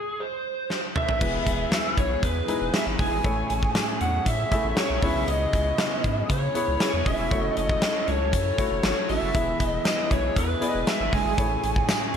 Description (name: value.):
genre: 1980s-style pop.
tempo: 118 BPM.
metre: 4/4.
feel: straight.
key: unclear.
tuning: A4 = 441 Hz.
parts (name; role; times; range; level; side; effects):
lead guitar through a small cranked amp; melody; 0.0-12.2 s; G#4 to G#5; -27 LUFS; right 1 dB; overdrive.
huge arena drum kit; drums; 0.7-12.2 s; crash cymbal, hi-hat, kick drum, snare drum, tambourine, toms; -26 LUFS; equal; none.
warm concert grand piano; accompaniment; 1.2-12.2 s; A2 to E5; -31 LUFS; left 4 dB; none.
chorused pulse-width pad; sustained chords; 1.2-12.2 s; C#3 to A4; -35 LUFS; right 2 dB; none.
saturated sub bass; bass; 1.2-12.2 s; D#1 to C#3; -29 LUFS; equal; none.
mellow synth brass; stabs; 2.7-11.3 s; G#3 to A4; -35 LUFS; right 3 dB; chorus, ping-pong delay.
room: light reverb, small room ambience.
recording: none.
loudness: -22 LUFS.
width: side -8 dB against mid.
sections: 0.0-1.2 A section; 1.2-12.2 B section.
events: stop 0.0-1.2; drum fill 0.7-1.2.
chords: 0.0 N.C.; 1.2 Emaj7; 3.2 Amaj7; 5.0 C#m7; 7.3 F#m7; 9.3 Emaj7; 11.4 Amaj7.